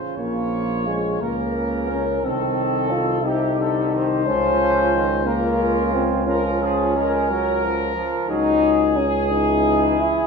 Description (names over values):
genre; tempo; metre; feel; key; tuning
classical, hymn-like piece for brass band; 59 BPM (dotted quarters); 12/8; rubato; Bb minor; A4 = 440 Hz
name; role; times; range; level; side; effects
dark trumpet section; melody; 0.0-10.3 s; G4 to Db5; -25 LUFS; left 3 dB; none
mellow flugelhorn; second line; 0.0-10.3 s; F4 to Bb4; -28 LUFS; right 8 dB; none
brilliant trombone; accompaniment; 0.0-10.3 s; C3 to Ab3; -28 LUFS; right 4 dB; none
warm euphonium; accompaniment; 0.2-10.3 s; Ab3 to F4; -22 LUFS; left 3 dB; none
mellow tuba; bass; 0.2-10.3 s; Bb1 to Db2; -26 LUFS; right 1 dB; none
room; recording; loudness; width
wet recital hall reverb, RT60 1.5 s; minimal, uncompressed stereo recording; -18 LUFS; side -5 dB against mid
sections
0.0-10.3 A section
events
none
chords
0.2 Bbm; 2.2 Adim/C; 4.3 Bbm/Db; 8.3 C#m